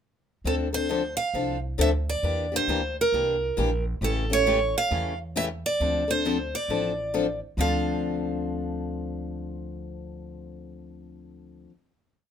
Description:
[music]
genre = acoustic string swing (jazz manouche)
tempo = 135 BPM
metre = 4/4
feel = swing 63% on 8ths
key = D minor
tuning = A4 = 442 Hz
[part]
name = upright bass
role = bass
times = 0.4-11.7 s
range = A1 to E2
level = -31 LUFS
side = right 1 dB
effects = none
[part]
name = picked steel-string acoustic guitar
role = melody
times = 0.5-11.7 s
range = A4 to F5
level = -26 LUFS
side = right 3 dB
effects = none
[part]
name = picked steel-string acoustic guitar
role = accompaniment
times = 0.5-11.7 s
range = C#3 to A4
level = -29 LUFS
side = left 5 dB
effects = none
[sound]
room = light reverb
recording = minimal, uncompressed stereo recording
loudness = -24 LUFS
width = side -8 dB against mid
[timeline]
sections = 0.5-7.6 A section; 7.6-11.1 final chord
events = none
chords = 0.5 Dm7; 2.2 Em7b5; 4.0 A7; 5.8 Dm7

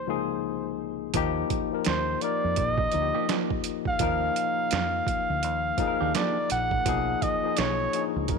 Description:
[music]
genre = R&B, neo-soul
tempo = 84 BPM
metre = 4/4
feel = swing 60% on 16ths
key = Eb major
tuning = A4 = 440 Hz
[part]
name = warm flugelhorn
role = melody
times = 0.0-8.4 s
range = B4 to Gb5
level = -28 LUFS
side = right 2 dB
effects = tape echo
[part]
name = tine electric piano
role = accompaniment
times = 0.0-8.4 s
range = Db2 to Bb4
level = -29 LUFS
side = left 13 dB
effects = medium stereo tremolo
[part]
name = deep dub fingered electric bass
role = bass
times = 1.1-8.4 s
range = F#1 to F2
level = -32 LUFS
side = right 2 dB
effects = none
[part]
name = boom bap sampler-style drum kit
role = drums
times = 1.1-8.4 s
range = hi-hat, kick drum, snare drum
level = -30 LUFS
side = right 6 dB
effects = none
[part]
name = clean electric guitar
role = second line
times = 3.1-6.4 s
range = F3 to G4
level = -33 LUFS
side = right 16 dB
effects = none
[sound]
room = light reverb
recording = 1960s-style stereo with parts hard left and right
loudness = -24 LUFS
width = side -4 dB against mid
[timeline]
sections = 0.0-8.4 A section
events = none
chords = 0.0 Dbmaj9; 1.1 Ebmaj9; 6.9 Bmaj9

